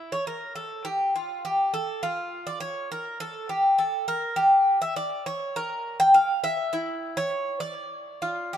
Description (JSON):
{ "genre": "greek folk", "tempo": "102 BPM", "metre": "4/4", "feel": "straight", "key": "D harmonic minor", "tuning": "A4 = 440 Hz", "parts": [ { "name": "Greek bouzouki", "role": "solo", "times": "0.0-8.6 s", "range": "E4 to G5", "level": "-23 LUFS", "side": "equal", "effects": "slapback echo" } ], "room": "moderate plate reverb, RT60 3.2 s", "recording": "dark, warm production", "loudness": "-23 LUFS", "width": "side -10 dB against mid", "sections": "0.0-8.6 A section", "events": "none", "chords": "none", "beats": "0.28 0.87 1.45 | 2.04 2.63 3.22 3.80 | 4.39 4.98 5.57 6.15 | 6.74 7.33 7.92 8.51" }